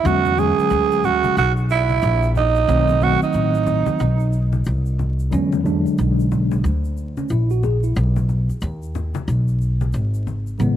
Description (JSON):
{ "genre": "hip hop, jazz-hop", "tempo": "91 BPM", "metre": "4/4", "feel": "swing 61% on 16ths", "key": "unclear", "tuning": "A4 = 441 Hz", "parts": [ { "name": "growling tenor saxophone", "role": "melody", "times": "0.0-4.5 s", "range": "D#4 to G#4", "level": "-19 LUFS", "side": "right 8 dB", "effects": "none" }, { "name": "mellow tine electric piano", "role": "accompaniment", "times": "0.0-10.8 s", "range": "C#3 to G#4", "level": "-22 LUFS", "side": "left 1 dB", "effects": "medium stereo tremolo" }, { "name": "upright bass", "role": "bass", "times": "0.0-10.8 s", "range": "G#1 to E2", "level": "-20 LUFS", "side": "equal", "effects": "none" }, { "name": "egg shaker and congas", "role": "percussion", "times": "0.1-10.8 s", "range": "none", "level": "-31 LUFS", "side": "left 5 dB", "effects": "none" } ], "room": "light reverb, small room ambience", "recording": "1960s-style stereo, vinyl crackle", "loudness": "-17 LUFS", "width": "side -11 dB against mid", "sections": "0.0-10.6 A section", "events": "none", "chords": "0.0 E13; 2.7 B7b9; 5.3 E13; 8.0 B" }